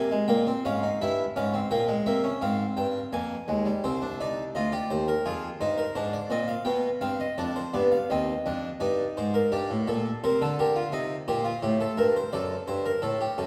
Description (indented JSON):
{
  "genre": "classical, baroque-style 3-part fugue for harpsichord",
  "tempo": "85 BPM",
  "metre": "4/4",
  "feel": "straight",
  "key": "F minor, C minor from 3.8 s",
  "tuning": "A4 = 440 Hz",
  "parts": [
    { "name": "harpsichord", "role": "solo", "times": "0.0-13.5 s", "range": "C2 to Ab5", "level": "-27 LUFS", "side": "equal", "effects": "none" }
  ],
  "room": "wet concert hall reverb, RT60 1.8 s",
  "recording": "heard from further back in the room",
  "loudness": "-27 LUFS",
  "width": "mono",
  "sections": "0.0-3.8 A section; 3.8-13.5 B section",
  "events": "none",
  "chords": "0.0 Bbm; 1.0 C/G; 2.4 Fm; 3.8 Cm; 5.3 Fm; 6.7 G; 8.1 Cm/Eb; 9.5 Gm; 10.9 Cm; 12.3 D/F#",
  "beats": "0.29 | 1.00 1.71 2.41 3.12 | 3.83 4.54 5.25 5.96 | 6.67 7.39 8.10 8.81 | 9.52 10.23 10.93 11.63 | 12.33 13.03"
}